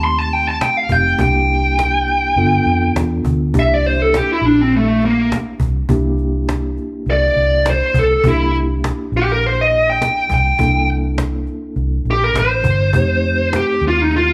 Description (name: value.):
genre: straight-eighth soul blues.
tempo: 102 BPM.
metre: 4/4.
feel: straight.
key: C mixolydian.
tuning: A4 = 440 Hz.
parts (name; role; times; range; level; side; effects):
smooth overdriven lead guitar; melody; 0.0-14.3 s; A3 to C6; -18 LUFS; equal; none.
mellow reed electric piano; accompaniment; 0.0-14.3 s; A3 to A4; -26 LUFS; equal; fast tremolo.
vintage muted fingered electric bass; bass; 0.0-14.3 s; F1 to F2; -21 LUFS; equal; none.
cajon; drums; 0.0-14.2 s; none; -23 LUFS; equal; none.
room: moderate large studio reverb, RT60 1.3 s.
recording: band playing live in one room.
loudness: -16 LUFS.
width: mono.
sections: 0.0-3.5 A section; 3.5-14.3 B section.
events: lead electric guitar solo 3.5-14.3.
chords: 0.0 F9; 1.2 C9; 2.4 G9; 3.5 C9; 12.9 F9.